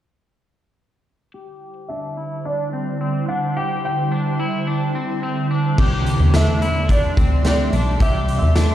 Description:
dream pop; 108 BPM; 4/4; straight; A4 = 436 Hz
ethereal airy pad; sustained chords; 2.0-8.7 s; D3 to C6; -24 LUFS; right 1 dB; ensemble chorus, built-in reverb, low-pass filter
electric guitar at the edge of break-up; arpeggios; 1.3-8.7 s; C4 to G4; -27 LUFS; left 3 dB; analog chorus, low-pass filter, digital delay
felt-muted upright piano; melody; 1.9-8.7 s; D5 to G5; -26 LUFS; equal; low-pass filter, digital delay
semi-hollow electric guitar; accompaniment; 5.8-8.7 s; C3 to G4; -27 LUFS; right 3 dB; tremolo, wide subtle chorus
plucky analog bass; bass; 5.8-8.7 s; B1 to E2; -18 LUFS; equal
raw garage drum kit; drums; 5.8-8.7 s; crash cymbal, hi-hat, kick drum, snare drum, tambourine; -20 LUFS; equal
light reverb; played on a big sound system in a bare room, large studio reverb; -17 LUFS; side -12 dB against mid
1.3-5.8 A section; 5.8-8.7 B section
filter sweep 1.3-5.8
1.3 Cadd9
| 1.34 1.89 2.45 3.00 | 3.56 4.11 4.67 5.23 | 5.78 6.34 6.89 7.45 | 8.00 8.56

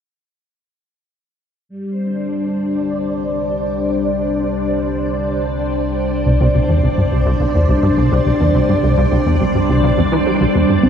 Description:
ambient, sequencer-driven space music; 105 BPM; 4/4; straight; A4 = 440 Hz
string machine, full ensemble; sustained chords; 1.7-10.9 s; G3 to D5; -17 LUFS; equal; phaser, ensemble chorus
analog drone; bass; 3.1-10.8 s; C2; -26 LUFS; equal; chorus
plucky analog bass; riff; 6.3-10.9 s; C2 to G3; -15 LUFS; equal; ensemble chorus, tape echo
soft round pluck; arpeggios; 10.8-10.9 s; C4; -12 LUFS; left 1 dB; chorus, auto-pan
wet huge ambient reverb, RT60 9.0 s; dark, warm production; -14 LUFS; side -8 dB against mid
1.7-10.8 A section
fade-in on synth drone 1.7-10.8
1.7 Csus2
| 1.69 2.26 2.83 3.40 | 3.98 4.55 5.12 5.69 | 6.26 6.83 7.41 7.98 | 8.55 9.12 9.69 10.26 | 10.83

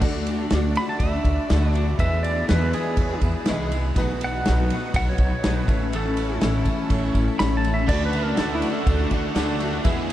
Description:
folk rock and heartland rock; 122 BPM; 4/4; straight; A4 = 441 Hz
bright upright piano; accompaniment; 0.0-10.1 s; B3 to E5; -34 LUFS; right 1 dB
picked steel-string acoustic guitar; accompaniment; 0.0-10.1 s; E2 to G#4; -29 LUFS; left 3 dB; lush chorus
rich studio string section; sustained chords; 0.0-10.1 s; A3 to D5; -32 LUFS; right 1 dB
upright bass; bass; 0.0-10.1 s; A1 to E2; -24 LUFS; equal
unplugged drum kit; drums; 0.0-10.1 s; crash cymbal, kick drum, ride cymbal, snare drum; -26 LUFS; equal; vintage 12-bit sampler grit
pedal steel guitar; melody; 0.8-9.8 s; E4 to B5; -29 LUFS; right 2 dB; tape echo
crunchy overdriven guitar; riff; 7.9-10.1 s; E2 to G#4; -31 LUFS; right 1 dB; analog chorus
moderate huge ambient reverb, RT60 8.2 s; dreamy mix soaked in reverb; -20 LUFS; side -13 dB against mid
0.0-10.1 A section
pedal steel guitar solo 0.0-10.1
0.0 D; 2.0 E; 4.0 B; 5.7 A; 7.9 D
| 0.02 0.51 1.00 1.50 | 1.99 2.48 2.97 3.46 | 3.96 4.45 4.94 5.43 | 5.92 6.42 6.91 7.40 | 7.89 8.38 8.88 9.37 | 9.86

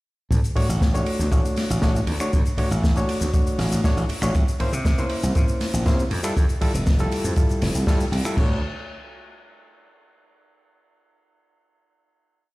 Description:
nu-disco, nu disco; 119 BPM; 4/4; straight; D major; A4 = 440 Hz
slap bass; bass; 0.3-8.6 s; F1 to C3; -24 LUFS; equal; tube saturation
kick drum; drums; 0.3-8.5 s; -21 LUFS; equal
open jazz drum kit; drums; 0.3-8.5 s; crash cymbal, finger snaps, hi-hat, ride cymbal, shaker, snare drum; -30 LUFS; left 1 dB
overdriven reed electric piano; accompaniment; 0.6-8.6 s; G3 to C#5; -27 LUFS; equal; dub echo
studio reverb; played on a big sound system in a bare room, stone room reverb; -19 LUFS; side -20 dB against mid
0.3-8.4 drop; 8.4-10.4 final chord
drop 0.3-8.4; band accent 7.9
0.3 Dmaj7; 4.3 C7b9; 6.1 Fmaj9; 8.4 Dmaj7
| 0.31 0.81 1.32 1.82 | 2.33 2.83 3.33 3.84 | 4.34 4.85 5.35 5.86 | 6.36 6.86 7.37 7.87 | 8.38

